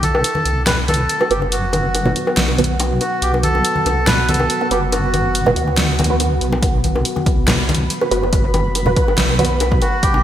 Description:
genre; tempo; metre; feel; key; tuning
deep dubstep; 141 BPM; 4/4; half-time; unclear; A4 = 440 Hz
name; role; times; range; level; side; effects
melodica; melody; 0.0-5.5, 9.8-10.2 s; F#4 to B4; -21 LUFS; equal; dub echo
deep dark ambient pad; sustained chords; 0.0-10.2 s; B3 to B5; -24 LUFS; right 1 dB; chorus, built-in reverb
deep soft wobble bass; bass; 0.0-10.2 s; F#1 to D2; -20 LUFS; equal; chorus
deep house drum kit; drums; 0.0-10.1 s; hi-hat, snare drum; -20 LUFS; equal; overdrive, studio reverb, gated reverb
congas and bongos; percussion; 0.0-10.2 s; none; -22 LUFS; left 1 dB; dub echo
filtered dub chord stab; stabs; 1.2-9.5 s; B3 to B4; -22 LUFS; right 3 dB; phaser, ensemble chorus, cassette tape, dub echo
electronic kick drum; drums; 6.6-10.1 s; none; -18 LUFS; equal; overdrive, studio reverb
room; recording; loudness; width
moderate lush hall reverb, RT60 2.0 s; bright 1980s-style digital production; -14 LUFS; side -11 dB against mid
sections
0.0-10.2 A section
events
build-up 0.0-10.2; filter sweep on synth stab 0.0-10.2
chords
0.0 B5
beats
0.24 0.67 1.09 | 1.52 1.95 2.37 2.80 | 3.22 3.65 4.07 4.50 | 4.92 5.35 5.78 6.20 | 6.63 7.05 7.48 7.90 | 8.33 8.75 9.18 9.61 | 10.03

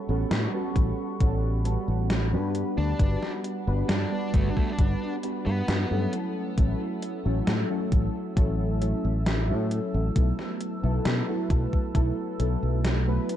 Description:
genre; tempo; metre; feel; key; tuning
vaporwave; 67 BPM; 4/4; straight; G lydian; A4 = 440 Hz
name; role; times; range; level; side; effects
warbly lo-fi synth keys; accompaniment; 0.0-13.4 s; F#3 to B4; -30 LUFS; equal; analog chorus, tape echo
warbly tape-like pad; sustained chords; 0.0-13.4 s; G3 to E6; -39 LUFS; equal; chorus, built-in reverb
fingered electric bass; bass; 0.1-13.2 s; G1 to B2; -26 LUFS; equal; none
gated 80s digital drum machine; drums; 0.3-13.4 s; hi-hat, snare drum; -30 LUFS; equal; gated reverb, gated reverb snare, overdrive, vintage 12-bit sampler grit
electronic kick drum; drums; 0.8-12.1 s; none; -24 LUFS; equal; overdrive, vintage 12-bit sampler grit
bluesy overdriven lead guitar; melody; 2.8-6.1 s; A3 to D4; -35 LUFS; equal; distortion, tape echo
room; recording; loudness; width
little or no reverb; dark, warm production; -24 LUFS; side -11 dB against mid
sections
0.0-13.4 A section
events
none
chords
0.0 A13; 2.5 Gmaj7; 6.1 F#m7/A; 10.2 B7sus4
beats
0.31 1.20 2.10 | 3.00 3.89 4.79 5.68 | 6.58 7.47 8.37 9.26 | 10.16 11.05 11.95 12.85

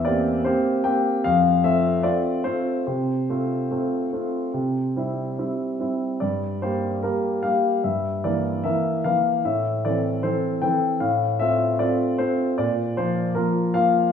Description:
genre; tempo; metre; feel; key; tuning
classical-period piano sonatina; 71-78 BPM; 4/4; rubato; F major; A4 = 440 Hz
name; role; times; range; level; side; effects
warm grand piano; solo; 0.0-14.1 s; E2 to G5; -20 LUFS; left 1 dB; none
room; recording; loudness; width
wet recital hall reverb, RT60 1.5 s; studio reverb; -20 LUFS; side -7 dB against mid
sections
0.0-14.1 A section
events
none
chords
0.0 C7/E; 1.2 F; 2.9 F/C; 4.5 C; 6.2 Gm; 7.8 Edim/G; 9.4 Am; 11.0 F/A; 12.6 Bb5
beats
0.46 1.24 2.04 | 2.87 3.70 4.54 5.38 | 6.22 7.04 7.84 8.64 | 9.44 10.23 11.01 11.80 | 12.58 13.35

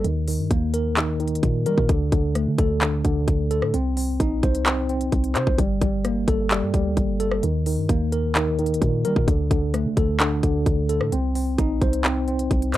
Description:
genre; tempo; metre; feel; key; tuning
hip hop, trap; 130 BPM; 4/4; half-time; unclear; A4 = 440 Hz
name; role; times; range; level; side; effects
mellow tine electric piano; accompaniment; 0.0-12.8 s; D3 to C5; -23 LUFS; equal; medium stereo tremolo
warm 808-style bass; bass; 0.0-12.8 s; G1 to G3; -25 LUFS; equal; none
trap drum kit; drums; 0.0-12.8 s; handclaps, hi-hat, kick drum, rim click; -23 LUFS; equal; none
room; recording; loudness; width
little or no reverb; dry, gritty hardware recording; -20 LUFS; side -14 dB against mid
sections
0.0-12.8 A section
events
none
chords
0.0 Eb5; 1.9 D5; 3.7 Cm7; 5.6 Gmadd9; 7.4 Eb5; 9.3 D5; 11.1 Cm7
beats
| 0.05 0.51 0.97 1.43 | 1.89 2.35 2.82 3.28 | 3.74 4.20 4.66 5.12 | 5.58 6.05 6.51 6.97 | 7.43 7.89 8.35 8.82 | 9.28 9.74 10.20 10.66 | 11.12 11.59 12.05 12.51

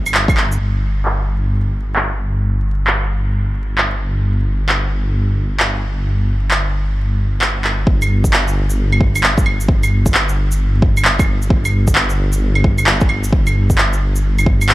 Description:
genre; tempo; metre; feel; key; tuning
future garage; 132 BPM; 4/4; swing 64% on 16ths; unclear; A4 = 441 Hz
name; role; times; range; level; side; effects
dark detuned saw bass; bass; 0.0-14.7 s; G1; -16 LUFS; equal; sidechain pumping
electronic shaker, claves and handclaps; drums; 0.1-14.7 s; none; -18 LUFS; right 1 dB; overdrive, low-pass filter on perc, low-pass filter on snare, low-pass filter on room
electronic kick drum; drums; 0.3-0.4, 7.9-14.6 s; none; -15 LUFS; equal; overdrive
room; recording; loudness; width
little or no reverb; vinyl crackle; -13 LUFS; side -17 dB against mid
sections
0.6-7.9 A section; 7.9-14.7 B section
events
filter sweep on drum 0.6-7.9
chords
none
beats
0.14 | 0.60 1.05 1.50 1.96 | 2.41 2.87 3.32 3.78 | 4.23 4.69 5.14 5.60 | 6.05 6.50 6.96 7.41 | 7.87 8.32 8.78 9.23 | 9.69 10.14 10.60 11.05 | 11.51 11.96 12.41 12.87 | 13.32 13.78 14.23 14.69

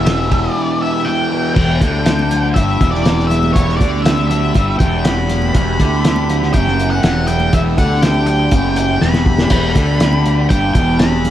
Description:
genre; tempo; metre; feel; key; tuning
psychedelic rock; 121 BPM; 4/4; straight; E minor; A4 = 437 Hz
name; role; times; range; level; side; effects
octave-fuzz lead guitar; melody; 0.0-11.3 s; C#5 to B5; -20 LUFS; equal; distortion, slapback echo
warm studio string section; sustained chords; 0.0-11.3 s; B3 to G4; -26 LUFS; right 2 dB; none
fuzz guitar; riff; 0.0-11.3 s; E2 to E3; -18 LUFS; equal; distortion, phaser
fuzz fingered electric bass; bass; 0.0-11.3 s; E1 to D2; -18 LUFS; equal; overdrive
cloth-damped thuddy drum kit; drums; 0.1-11.3 s; crash cymbal, hi-hat, kick drum, ride cymbal, snare drum; -16 LUFS; equal; none
congas; percussion; 1.8-11.3 s; none; -28 LUFS; left 4 dB; none
room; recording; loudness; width
light reverb, studio reverb; none; -12 LUFS; side -12 dB against mid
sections
0.0-1.6 A section; 1.6-11.3 B section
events
drum fill 9.0-9.5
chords
0.0 Em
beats
0.07 0.57 1.07 | 1.57 2.07 2.56 3.06 | 3.56 4.05 4.55 5.05 | 5.54 6.04 6.54 7.03 | 7.53 8.03 8.52 9.02 | 9.51 10.01 10.51 11.00

